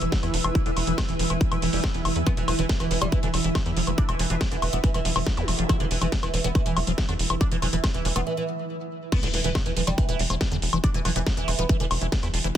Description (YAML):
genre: psychedelic trance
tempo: 140 BPM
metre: 4/4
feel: straight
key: unclear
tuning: A4 = 440 Hz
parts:
  - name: pulsing gated texture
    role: sustained chords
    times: 0.0-12.6 s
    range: E3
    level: -33 LUFS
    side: right 2 dB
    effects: chorus, built-in reverb, sidechain pumping
  - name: liquid acid bass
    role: riff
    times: 0.0-12.5 s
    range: D3 to B3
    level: -31 LUFS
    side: equal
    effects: phaser, auto-pan, sidechain pumping, ping-pong delay
  - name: tight sequencer bass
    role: bass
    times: 0.0-12.5 s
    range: E1 to E2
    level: -28 LUFS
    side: equal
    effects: none
  - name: techno drum kit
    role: drums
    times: 0.0-12.6 s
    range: crash cymbal, hi-hat, snare drum, woodblock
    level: -29 LUFS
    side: left 1 dB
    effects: none
  - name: granular cloud pad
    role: texture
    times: 0.0-8.3 s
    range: E4 to E6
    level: -34 LUFS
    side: equal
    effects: built-in reverb, sidechain pumping
  - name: electronic kick drum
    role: drums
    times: 0.1-12.6 s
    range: none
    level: -25 LUFS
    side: equal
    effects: distortion
  - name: oud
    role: melody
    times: 2.3-12.6 s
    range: E3 to E4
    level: -32 LUFS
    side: right 3 dB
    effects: phaser, sidechain pumping, ping-pong delay
  - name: zap and impact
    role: sound effects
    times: 5.4-5.5, 9.2-10.8 s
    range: none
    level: -37 LUFS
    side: equal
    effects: none
room: digital ambience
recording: dense, heavily limited modern master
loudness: -22 LUFS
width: side -10 dB against mid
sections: 0.0-9.1 A section; 9.1-12.6 B section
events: break 8.3-9.1; drop 9.1-12.6; impact 9.1-10.8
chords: 0.0 E5